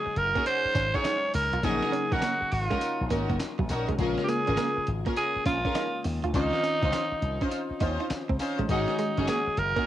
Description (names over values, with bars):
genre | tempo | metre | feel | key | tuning
R&B, new jack swing | 102 BPM | 4/4 | swing 65% on 16ths | unclear | A4 = 445 Hz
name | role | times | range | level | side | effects
breathy tenor saxophone | melody | 0.0-9.9 s | Eb4 to Db5 | -28 LUFS | right 1 dB | cassette tape, plate reverb, tape echo
FM electric piano with auto-pan | accompaniment | 0.0-9.9 s | Db3 to Gb4 | -35 LUFS | left 8 dB | cassette tape, plate reverb
direct-recorded clean electric guitar | riff | 0.1-9.8 s | Gb3 to F4 | -34 LUFS | right 6 dB | wide subtle chorus, cassette tape
slap bass with an envelope filter | bass | 0.1-9.7 s | Gb1 to Eb2 | -30 LUFS | equal | none
dusty soul sampler-style drum kit | drums | 0.2-9.9 s | handclaps, hi-hat, kick drum, snare drum, tambourine | -34 LUFS | equal | cassette tape
warm symphonic string section | stabs | 0.3-9.9 s | Db4 to C5 | -33 LUFS | equal | cassette tape, plate reverb
room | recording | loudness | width
moderate small room ambience, RT60 0.5 s | home recording on cassette | -25 LUFS | side -12 dB against mid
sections
0.0-9.9 A section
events
none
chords
0.0 Ab7sus4; 1.6 Gb6; 4.0 Bbm7; 6.3 Dbmaj9; 8.7 Ab7sus4